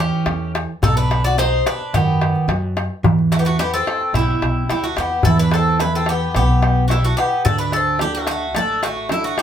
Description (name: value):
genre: greek folk, Greek bouzouki band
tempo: 109 BPM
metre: 4/4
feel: straight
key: E minor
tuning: A4 = 440 Hz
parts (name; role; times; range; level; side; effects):
- Greek bouzouki; melody; 0.0-9.4 s; E4 to D5; -21 LUFS; equal; none
- Greek bouzouki; second line; 0.0-9.4 s; G3 to F#4; -24 LUFS; left 2 dB; none
- nylon-string guitar; accompaniment; 0.0-9.4 s; B2 to D#5; -22 LUFS; right 3 dB; none
- upright bass; bass; 0.0-9.3 s; A1 to F#2; -22 LUFS; equal; none
- darbuka; percussion; 0.1-9.4 s; none; -22 LUFS; left 2 dB; none
room: moderate studio ambience, RT60 0.5 s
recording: band playing live in one room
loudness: -16 LUFS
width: side -9 dB against mid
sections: 0.0-5.3 A section; 5.3-9.4 B section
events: none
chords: 0.0 A; 0.8 B; 3.0 Em; 7.5 D